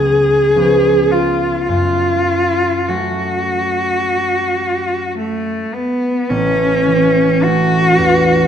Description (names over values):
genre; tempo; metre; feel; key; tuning
classical, romantic duo for cello and harp; 50-59 BPM; 4/4; rubato; F# minor; A4 = 440 Hz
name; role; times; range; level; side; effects
rich cello; melody; 0.0-8.5 s; A3 to G#4; -14 LUFS; left 1 dB; none
concert harp; accompaniment; 0.0-8.5 s; A1 to C#4; -17 LUFS; right 1 dB; none
room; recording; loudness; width
moderate scoring stage reverb, RT60 1.7 s; minimal, uncompressed stereo recording; -13 LUFS; side -8 dB against mid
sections
0.0-6.3 A section; 6.3-8.5 B section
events
none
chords
0.0 C#7; 1.7 F#m; 6.3 A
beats
0.56 | 1.69 2.89 4.05 5.19 | 6.30 7.45